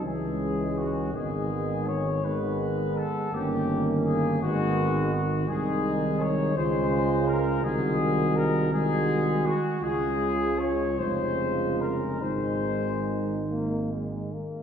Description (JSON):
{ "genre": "classical, hymn-like piece for brass band", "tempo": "46-57 BPM (dotted quarters)", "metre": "6/8", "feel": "rubato", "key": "Db major from 5.5 s", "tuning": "A4 = 435 Hz", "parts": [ { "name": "dark trumpet section", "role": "melody", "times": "0.0-13.5 s", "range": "F#4 to C#5", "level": "-30 LUFS", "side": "left 6 dB", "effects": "none" }, { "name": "dark French horn section", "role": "second line", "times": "0.0-14.3 s", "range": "B3 to Gb4", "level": "-32 LUFS", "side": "right 6 dB", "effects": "none" }, { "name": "dark euphonium", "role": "accompaniment", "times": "0.0-14.4 s", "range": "Db3 to E3", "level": "-31 LUFS", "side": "right 1 dB", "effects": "none" }, { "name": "warm trombone section", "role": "accompaniment", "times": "0.0-14.6 s", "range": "G#3 to Bb3", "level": "-32 LUFS", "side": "equal", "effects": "none" }, { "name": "mellow tuba", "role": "bass", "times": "0.0-14.4 s", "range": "F1 to Db2", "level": "-31 LUFS", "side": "equal", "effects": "none" } ], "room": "wet concert hall reverb, RT60 1.9 s", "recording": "heard from further back in the room", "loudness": "-24 LUFS", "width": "side -8 dB against mid", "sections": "0.0-14.6 A section", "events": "none", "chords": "0.0 C#m; 1.1 G#m; 3.3 D#7/G; 4.4 G#m; 5.5 Ab/C; 6.6 Db; 7.6 Ab7/C; 9.8 Db; 11.0 Db/F; 12.2 Ab" }